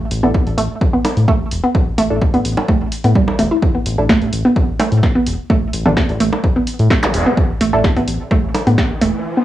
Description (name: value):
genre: minimal techno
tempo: 128 BPM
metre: 4/4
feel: straight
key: unclear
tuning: A4 = 441 Hz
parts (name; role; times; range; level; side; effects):
- round analog bass; bass; 0.1-9.1 s; E1 to A2; -17 LUFS; left 1 dB; tube saturation, sidechain pumping
- punchy analog drum machine; drums; 0.1-9.1 s; hi-hat, snare drum; -23 LUFS; equal; cassette tape
- hollow square pluck; riff; 0.2-9.4 s; G3 to E4; -17 LUFS; right 1 dB; chorus, sidechain pumping, cassette tape, analog delay
- filtered dub chord stab; stabs; 0.2-7.8 s; D4 to A4; -21 LUFS; right 1 dB; chorus, cassette tape, tape echo
- electronic kick drum; drums; 0.3-8.9 s; none; -18 LUFS; equal; cassette tape
- electronic bongos and toms; percussion; 1.0-8.6 s; none; -22 LUFS; equal; cassette tape, tape echo
- zap and riser; sound effects; 7.0-9.4 s; none; -23 LUFS; equal; none
room: moderate booth ambience, RT60 0.2 s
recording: home recording on cassette, small room ambience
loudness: -13 LUFS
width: side -13 dB against mid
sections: 0.0-9.4 A section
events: riser 7.4-9.4; kick drops out 9.2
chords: 0.0 A5